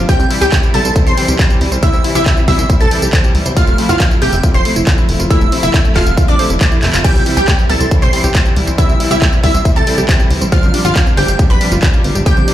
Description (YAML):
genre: uplifting trance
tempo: 138 BPM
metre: 4/4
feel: straight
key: C major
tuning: A4 = 440 Hz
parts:
  - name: bright symphonic string section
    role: sustained chords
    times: 0.0-12.5 s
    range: C3 to E4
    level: -20 LUFS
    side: left 1 dB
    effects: sidechain pumping
  - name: wide unison pluck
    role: arpeggios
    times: 0.0-12.5 s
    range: A3 to C6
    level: -23 LUFS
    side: right 2 dB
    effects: sidechain pumping, digital delay
  - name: plucky analog bass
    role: bass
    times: 0.0-12.4 s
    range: F1 to C2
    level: -16 LUFS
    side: equal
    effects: sidechain pumping
  - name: wide unison pluck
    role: melody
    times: 0.1-12.5 s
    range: D4 to C6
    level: -19 LUFS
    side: equal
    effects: wide subtle chorus, sidechain pumping, dub echo
  - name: plucky unison lead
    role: second line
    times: 0.1-12.5 s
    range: D6 to C7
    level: -22 LUFS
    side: right 1 dB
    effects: sidechain pumping, digital delay
  - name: big-room dance drum kit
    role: drums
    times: 0.1-12.5 s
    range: crash cymbal, handclaps, hi-hat, tambourine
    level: -20 LUFS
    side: right 1 dB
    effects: sidechain pumping on hats, sidechain pumping on perc, sidechain pumping on cymbals
  - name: electronic kick drum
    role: drums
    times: 0.1-12.3 s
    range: none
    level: -12 LUFS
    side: equal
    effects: none
room: light reverb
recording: played on a big sound system in a bare room, large studio reverb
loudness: -10 LUFS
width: side -12 dB against mid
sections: 0.0-12.5 A section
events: drum fill 6.8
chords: 0.1 C; 3.6 Fmaj7; 7.0 C; 10.5 G7sus4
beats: | 0.09 0.52 0.96 1.39 | 1.83 2.26 2.70 3.13 | 3.57 4.00 4.43 4.87 | 5.30 5.74 6.17 6.61 | 7.04 7.48 7.91 8.35 | 8.78 9.22 9.65 10.09 | 10.52 10.96 11.39 11.83 | 12.26